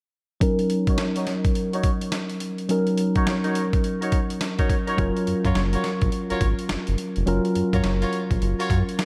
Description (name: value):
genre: R&B, new jack swing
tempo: 105 BPM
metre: 4/4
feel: swing 62% on 16ths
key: Eb minor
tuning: A4 = 440 Hz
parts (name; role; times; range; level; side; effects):
- mellow tine electric piano; accompaniment; 0.4-9.1 s; Gb3 to Bb4; -27 LUFS; equal; analog chorus, low-pass filter
- boom bap sampler-style drum kit; drums; 0.4-9.1 s; hi-hat, kick drum, snare drum; -28 LUFS; equal; none
- warm horn section; stabs; 0.9-8.8 s; Eb4 to Db5; -32 LUFS; equal; low-pass filter, diffuse ambient delay
- round analog bass; bass; 5.0-8.8 s; F1 to Gb2; -26 LUFS; equal; none
room: moderate lush hall reverb, RT60 1.7 s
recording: dreamy mix soaked in reverb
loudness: -23 LUFS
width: mono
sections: 0.4-9.1 A section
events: filter sweep 0.4-9.1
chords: 0.4 Ebm7; 5.0 Gbmaj7